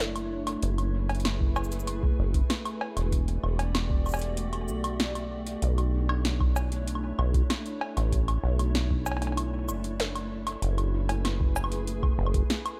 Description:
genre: IDM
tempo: 96 BPM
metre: 4/4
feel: straight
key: B minor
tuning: A4 = 442 Hz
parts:
  - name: glassy FM pad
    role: sustained chords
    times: 0.0-12.8 s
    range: A3 to D5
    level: -38 LUFS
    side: equal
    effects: ensemble chorus, built-in reverb, sidechain pumping
  - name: deep acid bass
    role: bass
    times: 0.0-12.4 s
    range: E1 to B1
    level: -31 LUFS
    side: equal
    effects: tube saturation
  - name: electro analog drum machine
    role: drums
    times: 0.0-12.8 s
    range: cowbell, hi-hat, shaker, snare drum, woodblock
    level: -35 LUFS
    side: equal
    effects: dub echo
  - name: electronic kick drum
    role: drums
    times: 1.4-12.5 s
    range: none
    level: -30 LUFS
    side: equal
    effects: none
room: light reverb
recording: echo-heavy mix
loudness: -28 LUFS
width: mono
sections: 0.0-12.8 A section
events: none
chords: 0.0 Bm11 (rootless); 0.6 F#m11; 3.1 Em11; 5.6 Bm11; 10.6 F#m11

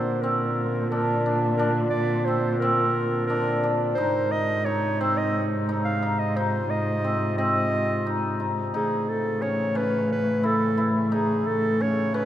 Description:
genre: contemporary instrumental, chamber music in an uneven meter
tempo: 176 BPM (eighths)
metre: 7/8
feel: straight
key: unclear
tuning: A4 = 441 Hz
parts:
  - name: dark clarinet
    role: melody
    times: 0.0-12.3 s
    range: Ab4 to F5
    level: -27 LUFS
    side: right 1 dB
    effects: none
  - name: mellow woodwind section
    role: sustained chords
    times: 0.0-12.3 s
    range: C3 to F4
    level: -31 LUFS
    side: right 1 dB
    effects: none
  - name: cimbalom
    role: arpeggios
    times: 0.0-12.3 s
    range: Bb3 to Bb4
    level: -27 LUFS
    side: equal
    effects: none
  - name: dark cello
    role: bass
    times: 0.0-12.3 s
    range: Ab2 to Bb2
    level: -27 LUFS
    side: equal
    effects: none
room: wet cathedral reverb, RT60 6.0 s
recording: in a vast, echoing space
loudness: -22 LUFS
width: side -12 dB against mid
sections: 0.0-12.3 A section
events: none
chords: 0.0 Bb; 4.0 Ab; 8.7 A

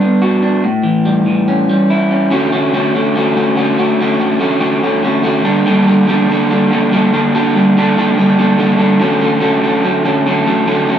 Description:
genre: rock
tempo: 144 BPM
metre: 4/4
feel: straight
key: D major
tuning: A4 = 440 Hz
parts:
  - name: electric guitar through a small old amp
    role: solo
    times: 0.0-11.0 s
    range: G2 to A4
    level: -10 LUFS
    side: equal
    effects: none
room: moderate small room ambience, RT60 0.5 s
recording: small room ambience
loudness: -10 LUFS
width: side -9 dB against mid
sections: 0.0-2.3 A section; 2.3-11.0 B section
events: none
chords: 0.0 Gmaj7; 0.6 A7; 2.3 Dmaj7; 5.4 Gmadd9; 9.0 Dmaj7

